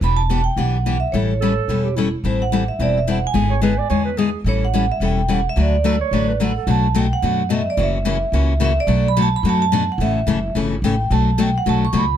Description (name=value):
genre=acoustic string swing (jazz manouche)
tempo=216 BPM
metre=4/4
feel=swing 57% on 8ths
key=unclear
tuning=A4 = 439 Hz
part: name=vibraphone with medium hard mallets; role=melody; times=0.0-12.2 s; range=C5 to C#6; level=-22 LUFS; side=right 5 dB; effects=none
part: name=picked steel-string acoustic guitar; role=accompaniment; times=0.0-12.0 s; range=B2 to B4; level=-20 LUFS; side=left 6 dB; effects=none
part: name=upright bass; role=bass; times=0.0-12.2 s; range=E1 to F#2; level=-20 LUFS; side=equal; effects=none
part: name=mellow clarinet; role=second line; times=1.4-6.7 s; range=E4 to D5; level=-25 LUFS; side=right 9 dB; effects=none
room=light reverb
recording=dark, warm production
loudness=-16 LUFS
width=side -10 dB against mid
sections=0.0-6.7 A section; 6.7-12.2 B section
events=none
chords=0.0 Em7; 1.1 A7; 2.2 Am7; 3.3 E7/G#; 4.5 A7; 5.6 D6; 6.7 Bm7; 7.8 F#7; 8.9 Bm7; 10.0 A; 11.1 Bm7